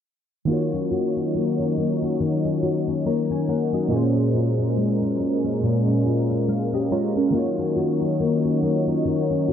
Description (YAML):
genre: R&B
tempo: 70 BPM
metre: 4/4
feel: swing 58% on 16ths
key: Eb minor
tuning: A4 = 440 Hz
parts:
  - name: warm analog keys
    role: accompaniment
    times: 0.5-9.5 s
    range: Bb2 to Bb5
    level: -24 LUFS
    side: right 2 dB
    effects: chorus
  - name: lush unison pad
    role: sustained chords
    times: 0.5-9.5 s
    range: Gb3 to Db5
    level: -27 LUFS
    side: right 2 dB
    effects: chorus
  - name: nylon-string guitar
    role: arpeggios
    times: 0.5-9.5 s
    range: Bb2 to Gb4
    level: -24 LUFS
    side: left 5 dB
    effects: none
room: light reverb, small room reverb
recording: dark, warm production, low-pass filter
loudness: -20 LUFS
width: side -8 dB against mid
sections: 0.5-9.5 A section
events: filter sweep 0.5-9.5; synth keys fill 6.1-7.3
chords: 0.5 Ebm7; 3.9 Bbm7; 7.3 Ebm7